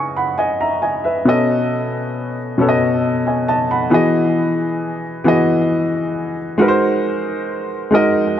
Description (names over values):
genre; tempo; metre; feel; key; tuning
R&B; 45 BPM (dotted quarters); 6/8; straight; unclear; A4 = 440 Hz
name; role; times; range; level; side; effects
warm baby grand piano; solo; 0.0-8.4 s; B2 to C#6; -15 LUFS; equal; tape echo
room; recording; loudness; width
light reverb, studio ambience; none; -15 LUFS; side -10 dB against mid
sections
0.0-8.4 A section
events
none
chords
0.0 C#m9; 1.3 B7; 3.9 Emaj9; 6.6 G#7